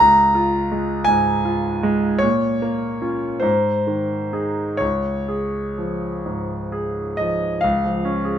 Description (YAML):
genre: classical, romantic nocturne for solo piano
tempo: 41-55 BPM (dotted quarters)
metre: 6/8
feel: rubato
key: Db major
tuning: A4 = 438 Hz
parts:
  - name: clear concert grand piano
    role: solo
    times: 0.0-8.4 s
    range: Db2 to Bb5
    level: -18 LUFS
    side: equal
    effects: none
room: light reverb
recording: minimal, uncompressed stereo recording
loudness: -18 LUFS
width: side -9 dB against mid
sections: 0.0-7.6 A section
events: none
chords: 0.0 Db; 2.2 Bbm; 3.4 Ab; 4.8 Db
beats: 1.08 | 2.22 3.44 | 4.81 6.25 | 7.64